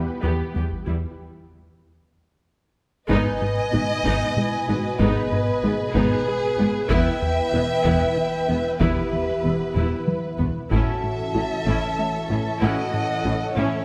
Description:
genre	cinematic, hybrid orchestral and electronic film score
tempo	63 BPM (dotted quarters)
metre	6/8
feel	straight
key	G# phrygian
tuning	A4 = 439 Hz
part	analog string pad	sustained chords	0.0-13.8 s	B2 to G#5	-34 LUFS	equal	ensemble chorus, low-pass filter
part	soft round pluck	arpeggios	0.0-13.8 s	E3 to E4	-35 LUFS	equal	none
part	plucky analog bass	riff	0.0-13.8 s	E2 to A3	-30 LUFS	equal	low-pass filter
part	clear symphonic viola section	accompaniment	0.2-13.8 s	G3 to G4	-31 LUFS	equal	low-pass filter
part	rich symphonic cello section	bass	0.2-13.7 s	E2 to A2	-31 LUFS	equal	none
part	taiko ensemble	drums	0.7-12.3 s	none	-31 LUFS	equal	none
part	pure sine lead	melody	3.1-13.8 s	B4 to A5	-32 LUFS	equal	chorus, low-pass filter, digital delay
part	rich chamber violin section	melody	3.1-13.8 s	A4 to B4	-40 LUFS	equal	none
part	warm symphonic violin section	second line	3.1-13.8 s	G#4 to E5	-32 LUFS	equal	none
part	mellow French horn section	sustained chords	3.1-13.8 s	C#4 to D#5	-31 LUFS	equal	low-pass filter
part	rich symphonic double bass section	bass	3.1-13.6 s	E1 to A1	-33 LUFS	equal	none
room	moderate scoring stage reverb, RT60 1.7 s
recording	none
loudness	-23 LUFS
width	mono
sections	0.0-3.1 A section; 3.1-13.8 B section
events	filter sweep 0.0-3.1; break 1.2-3.1; drum fill 9.8-10.7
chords	0.0 Em; 3.1 G#m; 6.9 Em; 10.7 A

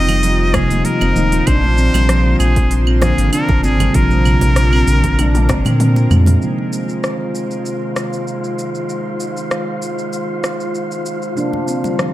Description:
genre	organic downtempo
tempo	97 BPM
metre	4/4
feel	straight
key	F dorian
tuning	A4 = 440 Hz
part	trumpet with straight mute	melody	0.0-5.8 s	Ab4 to Eb5	-22 LUFS	equal	dub echo, shimmer reverb
part	muted felt-like synth keys	accompaniment	0.0-12.1 s	C3 to Eb4	-25 LUFS	right 2 dB	chorus, phaser, sidechain pumping, tape echo
part	airy breathy pad	sustained chords	0.0-12.1 s	D3 to Eb5	-24 LUFS	equal	chorus, sidechain pumping, shimmer reverb
part	handpan	arpeggios	0.0-6.3, 11.4-12.1 s	C3 to D4	-20 LUFS	equal	vintage 12-bit sampler grit, tape echo, shimmer reverb
part	warm sub bass	bass	0.0-6.4 s	Eb1 to Bb2	-14 LUFS	equal	tube saturation, sidechain pumping
part	organic electronic drum kit	drums	0.1-12.1 s	claves, hi-hat, rim click, shaker, toms	-23 LUFS	equal	none
part	congas	percussion	0.1-6.4, 11.5-12.0 s	none	-27 LUFS	right 2 dB	none
part	electronic kick drum	drums	0.5-5.6 s	none	-18 LUFS	equal	overdrive
part	wind-like tuned noise texture	texture	7.2-12.1 s	F4 to F5	-27 LUFS	left 1 dB	built-in reverb, shimmer reverb
room	light reverb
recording	echo-heavy mix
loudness	-13 LUFS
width	side -15 dB against mid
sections	0.0-6.4 A section; 6.4-12.1 B section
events	drum fill 5.2-6.4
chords	0.0 F5; 1.5 Bbadd9; 6.4 Fm7; 11.4 Bbadd9

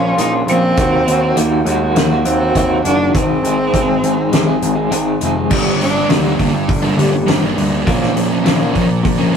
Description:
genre	quiet-loud alternative rock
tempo	102 BPM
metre	4/4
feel	straight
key	G phrygian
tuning	A4 = 440 Hz
part	rich cello	melody	0.0-7.3 s	Bb2 to Eb4	-18 LUFS	right 1 dB	none
part	electric guitar through a small old amp	arpeggios	0.0-9.4 s	G2 to Ab4	-17 LUFS	left 1 dB	tremolo
part	overdriven picked electric bass	bass	0.0-9.4 s	F1 to Eb2	-20 LUFS	equal	none
part	loose indie drum kit	drums	0.2-9.2 s	crash cymbal, hi-hat, kick drum, snare drum	-18 LUFS	left 1 dB	none
part	fuzz guitar	riff	5.5-9.4 s	G2 to D4	-17 LUFS	right 1 dB	distortion
room	light reverb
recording	rough rehearsal-room recording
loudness	-12 LUFS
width	side -7 dB against mid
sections	0.0-5.5 A section; 5.5-9.4 B section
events	half time 0.0-5.5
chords	0.0 Bbm; 0.8 Ebm; 3.1 Ab; 5.5 Gm; 7.9 Bbm

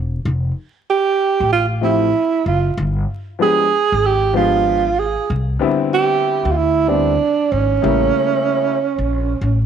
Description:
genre	hip hop, jazz-hop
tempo	95 BPM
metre	4/4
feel	swing 65% on 16ths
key	unclear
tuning	A4 = 440 Hz
part	upright bass	bass	0.0-9.7 s	E1 to D2	-20 LUFS	equal	none
part	breathy tenor saxophone	melody	0.9-9.7 s	C#4 to Ab4	-16 LUFS	right 6 dB	slapback echo
part	warm upright piano	accompaniment	1.8-8.7 s	C#3 to G4	-20 LUFS	left 7 dB	none
room	light reverb, studio ambience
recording	1960s-style stereo with parts hard left and right, vinyl crackle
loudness	-15 LUFS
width	side -8 dB against mid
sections	0.0-9.7 A section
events	none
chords	0.2 Fmaj7; 2.8 G7b9; 5.3 Cmaj7; 7.8 A7b9

